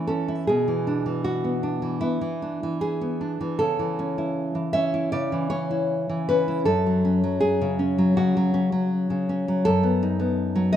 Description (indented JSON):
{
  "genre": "romantic piece for solo classical guitar",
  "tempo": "78 BPM",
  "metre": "4/4",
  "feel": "uneven beats, rubato",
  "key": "A major",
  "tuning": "A4 = 440 Hz",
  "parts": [
    { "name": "nylon-string guitar", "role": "solo", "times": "0.0-10.8 s", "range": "F#2 to E5", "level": "-21 LUFS", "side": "equal", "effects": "none" }
  ],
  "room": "wet recital hall reverb, RT60 1.7 s",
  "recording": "minimal, uncompressed stereo recording",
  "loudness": "-21 LUFS",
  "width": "side -10 dB against mid",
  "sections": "0.0-10.8 A section",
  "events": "none",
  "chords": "0.5 E7/B; 3.6 A/C#; 6.7 F#m; 9.7 B7/F#",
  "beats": "| 0.47 1.25 2.03 2.82 | 3.60 4.38 5.13 5.90 | 6.66 7.41 8.16 8.91 | 9.65 10.38"
}